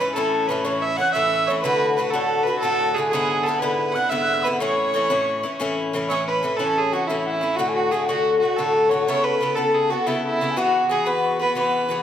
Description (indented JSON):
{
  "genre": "celtic folk, Celtic slip jig",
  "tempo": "121 BPM (dotted quarters)",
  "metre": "9/8",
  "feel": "straight",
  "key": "A major",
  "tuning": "A4 = 440 Hz",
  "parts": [
    { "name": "rich fiddle", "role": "melody", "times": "0.0-12.0 s", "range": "E4 to F#5", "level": "-22 LUFS", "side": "right 4 dB", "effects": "none" },
    { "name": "mellow wooden flute", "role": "second line", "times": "0.0-11.8 s", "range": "E5 to F#6", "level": "-26 LUFS", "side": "left 2 dB", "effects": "none" },
    { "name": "Irish bouzouki", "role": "accompaniment", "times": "0.0-12.0 s", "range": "G#2 to A4", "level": "-22 LUFS", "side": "left 3 dB", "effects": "none" }
  ],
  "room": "wet recital hall reverb, RT60 1.5 s",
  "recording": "none",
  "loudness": "-19 LUFS",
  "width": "side -9 dB against mid",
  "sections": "0.0-6.1 A section; 6.1-12.0 B section",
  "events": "none",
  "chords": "0.2 A; 1.6 D; 3.1 E7; 4.6 A; 7.6 D; 9.1 Aadd9/C#; 10.6 Eadd9"
}